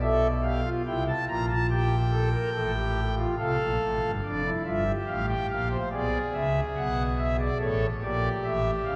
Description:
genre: classical, baroque-style 3-part fugue for pipe organ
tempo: 71 BPM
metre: 4/4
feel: straight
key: F major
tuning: A4 = 440 Hz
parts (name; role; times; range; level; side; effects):
- pipe organ, foundations; solo; 0.0-9.0 s; F1 to Bb5; -27 LUFS; equal; none
room: wet church reverb, RT60 3.3 s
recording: heard from further back in the room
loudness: -27 LUFS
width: mono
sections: 0.0-4.2 A section; 4.2-9.0 B section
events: none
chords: 0.0 G7/B; 0.8 C; 2.5 F/A; 4.2 Dm/F; 5.9 E7/B; 7.6 A

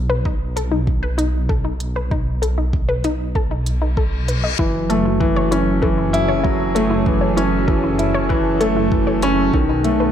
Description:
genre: piano and strings electronica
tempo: 97 BPM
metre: 4/4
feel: straight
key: F# dorian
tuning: A4 = 440 Hz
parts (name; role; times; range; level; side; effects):
- dark detuned saw bass; bass; 0.0-10.1 s; F#1 to B1; -22 LUFS; equal; sidechain pumping
- wide unison pluck; arpeggios; 0.1-10.1 s; D#4 to D#5; -25 LUFS; left 2 dB; sidechain pumping, digital delay
- electronic kick drum; drums; 0.3-9.7 s; none; -21 LUFS; equal; studio reverb
- electronic hi-hat; drums; 0.6-10.0 s; none; -31 LUFS; right 2 dB; studio reverb
- reverse cymbal; sound effects; 3.9-4.6 s; none; -29 LUFS; left 6 dB; none
- lush unison pad; sustained chords; 4.6-10.1 s; F#3 to C#5; -23 LUFS; right 2 dB; chorus
- clear upright piano; riff; 4.6-10.1 s; D#3 to E4; -18 LUFS; equal; digital delay
room: light reverb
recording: dark, warm production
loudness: -16 LUFS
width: side -9 dB against mid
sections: 0.0-10.1 A section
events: reverse cymbal 3.9-4.6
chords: 0.0 B; 4.6 F#m7; 9.5 B7

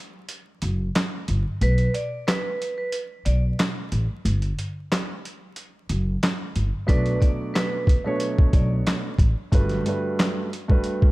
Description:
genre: hip hop, boom-bap hip-hop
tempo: 91 BPM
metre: 4/4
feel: swing 55% on 16ths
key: B minor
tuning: A4 = 440 Hz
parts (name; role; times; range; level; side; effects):
- boom bap sampler-style drum kit; drums; 0.3-11.1 s; handclaps, hi-hat, kick drum, snare drum; -22 LUFS; equal; none
- upright bass; bass; 0.6-9.8 s; F#1 to B1; -23 LUFS; equal; none
- vibraphone with medium mallets; melody; 1.6-8.7 s; B4 to D5; -30 LUFS; right 2 dB; high-pass filter, low-pass filter
- dark grand piano; accompaniment; 6.9-11.1 s; G2 to D5; -27 LUFS; right 1 dB; cassette tape, high-pass filter, low-pass filter
room: small room ambience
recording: vinyl crackle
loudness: -21 LUFS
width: side -19 dB against mid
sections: 0.0-11.1 A section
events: break 0.0-6.9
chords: 0.0 N.C.; 6.9 Bm7; 9.5 Gmaj7

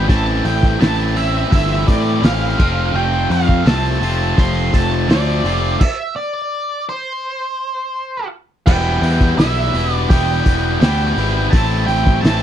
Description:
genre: classic rock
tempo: 84 BPM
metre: 4/4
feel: straight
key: unclear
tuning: A4 = 440 Hz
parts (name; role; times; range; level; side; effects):
- octave-fuzz lead guitar; melody; 0.0-12.4 s; C5 to C6; -22 LUFS; right 2 dB; distortion, slapback echo
- distorted electric guitar; riff; 0.0-12.4 s; A2 to F4; -20 LUFS; left 1 dB; overdrive
- fuzz picked electric bass; bass; 0.0-12.4 s; E1 to A2; -18 LUFS; equal; overdrive
- cloth-damped thuddy drum kit; drums; 0.1-12.4 s; crash cymbal, hi-hat, kick drum, snare drum; -15 LUFS; equal; none
room: little or no reverb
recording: dry, close 1970s-style studio recording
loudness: -14 LUFS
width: side -10 dB against mid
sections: 0.0-8.7 A section; 8.7-12.4 A section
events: stop 5.8-8.7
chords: 0.1 Am; 2.6 F6; 5.8 N.C.; 8.7 Em; 11.5 Am

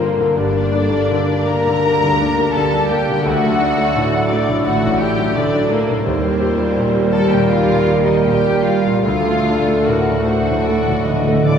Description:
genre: classical, romantic movement for piano and orchestra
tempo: 83 BPM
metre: 4/4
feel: uneven beats, rubato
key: unclear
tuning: A4 = 440 Hz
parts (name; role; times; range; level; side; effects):
- clear concert grand piano; melody; 0.0-11.6 s; D2 to G4; -19 LUFS; left 1 dB; none
- muted symphonic violin section; melody; 0.0-11.6 s; Bb4 to D6; -26 LUFS; left 3 dB; none
- bright clarinet; second line; 0.0-11.6 s; F4 to Eb5; -25 LUFS; left 1 dB; none
- mellow hollow silver concert flute; second line; 0.0-11.6 s; Bb4 to Bb5; -26 LUFS; right 1 dB; none
- muted symphonic violin section; second line; 0.0-11.6 s; Bb3 to D5; -25 LUFS; left 1 dB; none
- mellow bassoon; accompaniment; 0.0-11.6 s; G3 to Bb3; -25 LUFS; right 2 dB; none
- muted symphonic viola section; accompaniment; 0.0-11.6 s; D3 to F4; -25 LUFS; right 2 dB; none
- mellow French horn section; sustained chords; 0.0-11.6 s; F4 to Bb4; -22 LUFS; left 1 dB; none
- muted symphonic double bass section; bass; 0.3-11.6 s; G1 to Eb2; -27 LUFS; right 4 dB; none
- muted symphonic cello section; bass; 0.4-11.6 s; D2 to D3; -26 LUFS; right 2 dB; none
- timpani; percussion; 9.0-11.6 s; D3; -24 LUFS; right 1 dB; none
room: wet scoring stage reverb, RT60 1.8 s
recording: recorded in a church or concert hall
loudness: -14 LUFS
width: side -7 dB against mid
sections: 0.0-11.6 A section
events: timpani fill 9.0-11.6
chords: 0.4 Gm; 3.2 D; 6.1 Eb6; 9.0 D

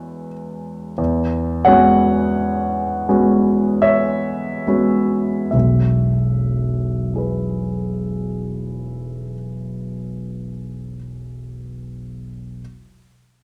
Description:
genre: classical, impressionist solo piano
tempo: 34-45 BPM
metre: 3/4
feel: rubato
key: E major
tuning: A4 = 440 Hz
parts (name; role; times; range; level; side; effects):
- clear grand piano; solo; 0.0-12.6 s; E1 to F#5; -20 LUFS; equal; none
room: wet recital hall reverb, RT60 1.6 s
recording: dark, warm production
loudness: -18 LUFS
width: mono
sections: 1.0-5.5 A section; 5.5-10.4 B section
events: slowing down 0.0-5.5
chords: 0.0 E69; 5.5 E

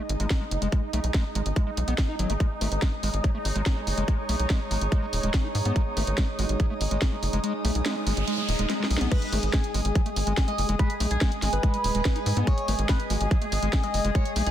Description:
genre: psychedelic trance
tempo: 143 BPM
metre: 4/4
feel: straight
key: G# minor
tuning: A4 = 438 Hz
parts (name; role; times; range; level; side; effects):
- bubbling stepped-filter texture; sustained chords; 0.0-14.5 s; D#4 to G#4; -33 LUFS; equal; chorus, built-in reverb, sidechain pumping
- overdriven acid bass; riff; 0.0-14.4 s; F#3 to D#4; -34 LUFS; moving between left 7 dB and right 5 dB; auto-pan, sidechain pumping, tape echo
- airy breathy pad; texture; 0.0-14.5 s; G#3 to D#6; -34 LUFS; right 1 dB; chorus, sidechain pumping
- tight sequencer bass; bass; 0.1-14.5 s; D#1 to G#2; -26 LUFS; equal; none
- drum and bass drum kit; drums; 0.1-14.5 s; crash cymbal, hi-hat, snare drum; -32 LUFS; right 1 dB; small room ambience
- electronic kick drum; drums; 0.3-14.2 s; none; -24 LUFS; equal; small room ambience
- formant-sweep wobble bass; second line; 2.6-14.5 s; D#3 to B3; -44 LUFS; left 3 dB; none
- noise sweep; sound effects; 7.8-9.1 s; none; -35 LUFS; right 2 dB; none
- overdriven synth lead; melody; 9.1-14.5 s; G#4 to D#5; -33 LUFS; right 2 dB; distortion, phaser, sidechain pumping, tape echo
room: light reverb, digital ambience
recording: dense, heavily limited modern master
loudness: -23 LUFS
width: side -11 dB against mid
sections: 0.0-9.1 A section; 9.1-14.5 B section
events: kick drops out 7.4-9.1; noise sweep 7.8-9.1; drum fill 8.7-9.1; band accent 9.0; drop 9.1-14.5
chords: 0.0 G#5

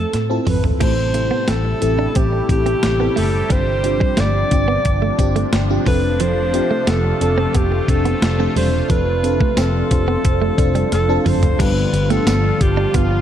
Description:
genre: 1980s-style pop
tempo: 89 BPM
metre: 4/4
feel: straight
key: G mixolydian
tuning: A4 = 439 Hz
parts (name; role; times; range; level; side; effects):
- breathy alto saxophone; melody; 0.0-13.2 s; F4 to D5; -22 LUFS; right 1 dB; none
- FM electric piano with soft pad layer; accompaniment; 0.0-13.2 s; G2 to A5; -22 LUFS; left 1 dB; chorus, phaser
- direct-recorded clean electric guitar; riff; 0.0-13.1 s; F3 to D4; -25 LUFS; right 6 dB; analog chorus, digital delay
- vintage muted fingered electric bass; bass; 0.0-13.2 s; E1 to A2; -20 LUFS; equal; none
- clean 12-bit digital drum machine; drums; 0.1-13.1 s; crash cymbal, hi-hat, kick drum, snare drum, tambourine, toms; -20 LUFS; equal; none
- sweeping resonant pad; sustained chords; 0.8-13.2 s; C3 to G4; -26 LUFS; left 1 dB; chorus
room: light reverb, digital ambience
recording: dark, warm production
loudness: -14 LUFS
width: side -10 dB against mid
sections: 0.8-11.6 A section; 11.6-13.2 B section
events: drum fill 0.1-0.8, 10.9-11.6; FM electric piano fill 10.6-11.6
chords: 0.0 Fmaj7; 0.8 Am7; 3.5 G7sus4; 5.9 F6; 11.6 G7

